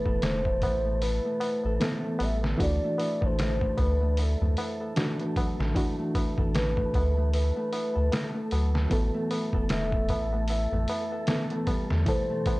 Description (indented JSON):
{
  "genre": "trip hop",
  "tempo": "76 BPM",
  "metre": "4/4",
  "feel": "swing 57% on 16ths",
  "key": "unclear",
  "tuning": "A4 = 440 Hz",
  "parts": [
    { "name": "pure breathy sine lead", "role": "melody", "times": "0.0-12.6 s", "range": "A4 to E5", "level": "-32 LUFS", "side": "equal", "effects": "lush chorus, tape echo" },
    { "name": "bright reed electric piano", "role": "accompaniment", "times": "0.0-12.6 s", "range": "B2 to A4", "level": "-33 LUFS", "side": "equal", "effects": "overdrive, tremolo" },
    { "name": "Celtic harp", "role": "arpeggios", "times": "0.0-12.6 s", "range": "F#3 to A4", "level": "-34 LUFS", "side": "equal", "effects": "tape echo" },
    { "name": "wind-like tuned noise texture", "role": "texture", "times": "0.0-12.6 s", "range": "A3 to A4", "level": "-42 LUFS", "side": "equal", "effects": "built-in reverb" },
    { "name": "soft dub sub bass", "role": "bass", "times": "0.1-12.1 s", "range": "E1 to E2", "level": "-27 LUFS", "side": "equal", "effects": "none" },
    { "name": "trip hop sampler-style drum kit", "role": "drums", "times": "0.1-12.6 s", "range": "hi-hat, kick drum, snare drum", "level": "-30 LUFS", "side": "equal", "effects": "none" },
    { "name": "tabla", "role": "percussion", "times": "0.1-12.6 s", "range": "none", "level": "-38 LUFS", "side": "equal", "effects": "none" }
  ],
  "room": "digital ambience",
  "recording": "dry, gritty hardware recording, cassette tape",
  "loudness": "-25 LUFS",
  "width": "side -20 dB against mid",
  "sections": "0.0-12.6 A section",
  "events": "none",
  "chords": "0.0 Asus2; 2.6 Dadd9; 8.9 Asus2",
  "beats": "0.23 1.02 1.81 | 2.60 3.38 4.17 4.96 | 5.75 6.54 7.33 8.12 | 8.91 9.70 10.49 11.28 | 12.07"
}